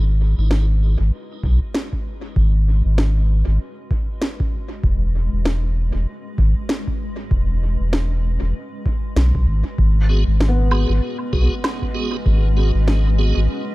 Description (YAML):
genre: ambient dub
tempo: 97 BPM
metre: 4/4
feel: swing 59% on 16ths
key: G# minor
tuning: A4 = 439 Hz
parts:
  - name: granular cloud pad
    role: sustained chords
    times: 0.0-13.7 s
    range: G#3 to D#5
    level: -32 LUFS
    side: left 1 dB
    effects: built-in reverb
  - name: warm sub bass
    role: bass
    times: 0.0-13.5 s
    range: E1 to B1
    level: -16 LUFS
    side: equal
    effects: none
  - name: electronic snare drum and woodblock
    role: drums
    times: 0.5-13.0 s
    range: none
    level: -26 LUFS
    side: equal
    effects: overdrive, studio reverb, dub echo
  - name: electronic kick drum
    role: drums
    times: 1.4-12.4 s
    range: none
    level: -22 LUFS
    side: equal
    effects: overdrive, studio reverb
  - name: tonewheel organ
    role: stabs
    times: 10.1-13.4 s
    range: B3 to G#4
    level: -29 LUFS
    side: right 3 dB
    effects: overdrive, chorus vibrato, slow rotary speaker, dub echo
  - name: felt-muted upright piano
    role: arpeggios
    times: 10.5-13.7 s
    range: B3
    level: -29 LUFS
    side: left 2 dB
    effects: dub echo
room: little or no reverb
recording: none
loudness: -17 LUFS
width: side -19 dB against mid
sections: 0.0-13.7 A section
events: fade-in on ambient pad 0.0-13.7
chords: 0.0 G#m7; 4.8 Emaj7; 9.8 G#m7